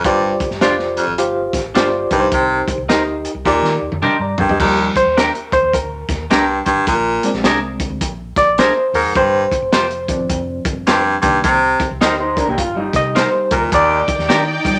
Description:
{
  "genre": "uptempo 1960s-style soul",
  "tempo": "105 BPM",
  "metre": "4/4",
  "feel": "swing 63% on 8ths",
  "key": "Eb major",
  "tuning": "A4 = 439 Hz",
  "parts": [
    { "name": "edgy baritone saxophone", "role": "riff", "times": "0.0-14.0 s", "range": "Eb2 to C3", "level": "-18 LUFS", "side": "equal", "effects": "none" },
    { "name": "hollow-body short-scale fingered electric bass", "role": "bass", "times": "0.0-14.8 s", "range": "F1 to Eb3", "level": "-31 LUFS", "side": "equal", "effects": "none" },
    { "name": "crunchy breakbeat drum kit", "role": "drums", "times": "0.0-14.8 s", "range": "crash cymbal, hi-hat, kick drum, snare drum, toms", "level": "-23 LUFS", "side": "equal", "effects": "none" },
    { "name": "barky reed electric piano", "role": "accompaniment", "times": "0.1-14.8 s", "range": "Eb3 to C6", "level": "-20 LUFS", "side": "equal", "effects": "fast tremolo" },
    { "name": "clean electric guitar", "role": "stabs", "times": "0.6-14.4 s", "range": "D4 to C5", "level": "-21 LUFS", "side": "equal", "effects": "none" },
    { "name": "electric guitar through a small old amp", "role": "riff", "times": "12.0-13.6 s", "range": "G3 to Eb5", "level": "-22 LUFS", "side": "equal", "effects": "none" },
    { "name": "warm studio string section", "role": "second line", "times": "13.7-14.8 s", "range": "Eb4 to G5", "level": "-22 LUFS", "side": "equal", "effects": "none" }
  ],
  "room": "wet studio reverb, RT60 0.6 s",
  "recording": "none",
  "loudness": "-16 LUFS",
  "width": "mono",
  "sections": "0.0-4.6 A section; 4.6-14.8 B section",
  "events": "drum fill 3.5-4.6; reed electric piano solo 4.6-14.8",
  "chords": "0.0 G7sus4; 2.0 Cm7; 3.5 Ebmaj7; 6.9 Bb7; 9.2 G7sus4; 11.2 Cm7; 13.7 Ebmaj7",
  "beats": "| 0.04 0.61 1.18 1.75 | 2.32 2.89 3.46 4.03 | 4.59 5.17 5.74 6.31 | 6.88 7.45 8.02 8.59 | 9.16 9.73 10.30 10.87 | 11.44 12.01 12.58 13.15 | 13.72 14.29"
}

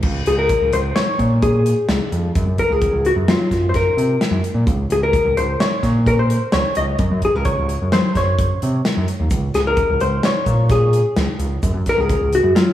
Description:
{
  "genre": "progressive instrumental, band music in an uneven meter",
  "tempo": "129 BPM",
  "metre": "5/4",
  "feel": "straight",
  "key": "Db major",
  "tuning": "A4 = 438 Hz",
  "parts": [
    { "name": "overdriven picked electric bass", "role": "bass", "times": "0.0-12.7 s", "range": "Db2 to Gb3", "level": "-19 LUFS", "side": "equal", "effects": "none" },
    { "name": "modern studio drum kit", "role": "drums", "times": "0.0-12.7 s", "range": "crash cymbal, hi-hat, kick drum, snare drum", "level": "-22 LUFS", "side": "equal", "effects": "none" },
    { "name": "vintage hollow-body jazz guitar", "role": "melody", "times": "0.3-12.7 s", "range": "F4 to Eb5", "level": "-18 LUFS", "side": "left 2 dB", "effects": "slapback echo, digital delay" },
    { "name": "egg shaker", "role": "percussion", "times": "9.3-11.8 s", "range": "none", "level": "-42 LUFS", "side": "right 3 dB", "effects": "none" }
  ],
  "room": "moderate lush hall reverb, RT60 1.6 s, studio ambience",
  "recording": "big arena sound, small room ambience",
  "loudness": "-15 LUFS",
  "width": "side -12 dB against mid",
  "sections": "0.0-12.7 A section",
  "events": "none",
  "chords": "0.0 Db5; 2.4 Gb; 4.7 Bbmadd9/Db; 7.0 Gb5; 9.3 Db5; 11.6 Gb5",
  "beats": "| 0.05 0.51 0.97 1.44 1.90 | 2.36 2.82 3.29 3.75 4.21 | 4.68 5.14 5.61 6.07 6.53 | 7.00 7.46 7.92 8.39 8.85 | 9.32 9.78 10.25 10.71 11.17 | 11.64 12.10 12.57"
}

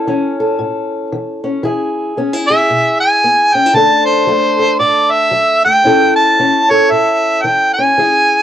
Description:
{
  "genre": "acoustic country blues, solo or duo",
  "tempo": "114 BPM",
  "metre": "4/4",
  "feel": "swing 61% on 8ths",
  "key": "A major",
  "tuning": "A4 = 440 Hz",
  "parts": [
    { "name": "fingerpicked steel-string acoustic guitar", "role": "accompaniment", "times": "0.0-8.4 s", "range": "A2 to A4", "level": "-16 LUFS", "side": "left 1 dB", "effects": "cassette tape, plate reverb" },
    { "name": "mellow harmonica", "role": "melody", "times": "2.5-8.4 s", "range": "C5 to A5", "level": "-10 LUFS", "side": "right 1 dB", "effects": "cassette tape, plate reverb" }
  ],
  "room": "moderate booth ambience, RT60 0.3 s",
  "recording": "home recording on cassette",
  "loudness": "-10 LUFS",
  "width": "side -10 dB against mid",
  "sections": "0.0-8.4 A section",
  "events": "none",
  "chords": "0.0 A; 1.6 E; 3.7 D; 5.8 A",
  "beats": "0.06 0.58 1.11 | 1.63 2.16 2.68 3.21 | 3.74 4.26 4.79 5.32 | 5.84 6.37 6.90 7.42 | 7.95"
}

